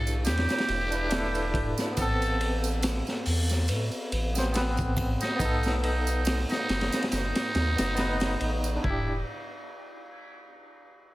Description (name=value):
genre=trip hop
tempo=70 BPM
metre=4/4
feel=swing 56% on 16ths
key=E minor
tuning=A4 = 443 Hz
part: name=trumpet with metal mute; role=melody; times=0.0-9.2 s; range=D#4 to A4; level=-33 LUFS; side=right 1 dB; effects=tape echo
part: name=barky tine electric piano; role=accompaniment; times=0.0-9.2 s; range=B3 to D#5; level=-32 LUFS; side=equal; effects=overdrive, tremolo, tape echo
part: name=soft dub sub bass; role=bass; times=0.0-9.2 s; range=E1 to A2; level=-29 LUFS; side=equal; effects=tube saturation
part: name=tambourine and triangle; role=percussion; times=0.1-8.8 s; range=none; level=-40 LUFS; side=right 6 dB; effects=none
part: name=crunchy breakbeat drum kit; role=drums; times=0.3-9.0 s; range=hi-hat, kick drum, ride cymbal, snare drum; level=-30 LUFS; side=equal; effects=none
room=little or no reverb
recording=none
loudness=-25 LUFS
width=side -18 dB against mid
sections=0.0-8.8 A section; 8.8-11.1 B section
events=none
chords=0.0 Em7; 2.0 Amadd9; 5.4 B7; 8.8 Em7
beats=0.26 1.11 | 1.97 2.83 3.69 4.54 | 5.40 6.26 7.11 7.97 | 8.83